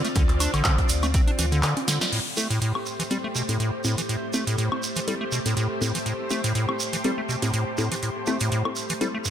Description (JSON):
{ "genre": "acid house", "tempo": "122 BPM", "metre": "4/4", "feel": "swing 55% on 16ths", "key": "A minor", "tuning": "A4 = 442 Hz", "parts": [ { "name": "string machine, full ensemble", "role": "sustained chords", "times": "0.0-9.3 s", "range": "A3 to D5", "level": "-30 LUFS", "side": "equal", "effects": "ensemble chorus, sidechain pumping" }, { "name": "acid bass, square", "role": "riff", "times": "0.0-9.3 s", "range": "G2 to D4", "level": "-27 LUFS", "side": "equal", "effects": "tube saturation, dub echo" }, { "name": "electro analog drum machine", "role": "drums", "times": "0.0-9.1 s", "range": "congas, crash cymbal, handclaps, hi-hat, snare drum, woodblock", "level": "-28 LUFS", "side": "equal", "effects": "none" }, { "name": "shekere", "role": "percussion", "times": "0.0-9.3 s", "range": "none", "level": "-32 LUFS", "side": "right 6 dB", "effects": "none" }, { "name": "saturated sub bass", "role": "bass", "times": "0.2-1.6 s", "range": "A1 to D2", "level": "-25 LUFS", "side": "equal", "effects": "tube saturation, sidechain pumping" }, { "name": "electronic kick drum", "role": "drums", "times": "0.2-1.2 s", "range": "none", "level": "-21 LUFS", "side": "equal", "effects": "none" }, { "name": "filtered dub chord stab", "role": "stabs", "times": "2.4-9.3 s", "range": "C4 to A4", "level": "-31 LUFS", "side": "left 2 dB", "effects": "chorus, cassette tape, dub echo" } ], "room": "light reverb, digital ambience", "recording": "none", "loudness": "-22 LUFS", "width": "side -10 dB against mid", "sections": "0.0-2.1 A section; 2.1-9.3 B section", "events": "filter sweep on acid bass 0.0-2.1; drum fill 1.9; band accent 2.0", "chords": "0.0 Dm7; 2.1 Am7" }